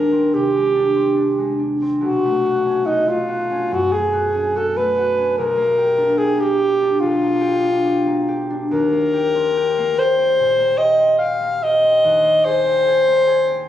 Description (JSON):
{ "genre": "classical, impressionist duo for alto saxophone and harp", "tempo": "72 BPM", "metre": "4/4", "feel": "rubato", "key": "unclear", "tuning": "A4 = 442 Hz", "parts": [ { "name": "clear alto saxophone", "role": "melody", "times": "0.0-13.7 s", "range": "Eb4 to F5", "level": "-16 LUFS", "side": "equal", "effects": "none" }, { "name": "concert harp", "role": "accompaniment", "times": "0.0-13.7 s", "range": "B1 to Ab4", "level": "-22 LUFS", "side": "equal", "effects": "none" } ], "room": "moderate recital hall reverb, RT60 1.4 s", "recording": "recorded on a phone in the room, club reverb, compression", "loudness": "-15 LUFS", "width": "side -11 dB against mid", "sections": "0.0-13.7 A section", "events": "none", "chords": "0.0 Abmaj7#11/Eb; 2.0 Bsus2; 5.4 Gm7/Cb; 8.7 Eb6; 12.0 Abadd9/Eb", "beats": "0.34 1.18 | 2.02 2.87 3.72 4.56 | 5.38 6.19 7.01 7.86 | 8.72 9.56 10.38 11.22 | 12.05 12.87" }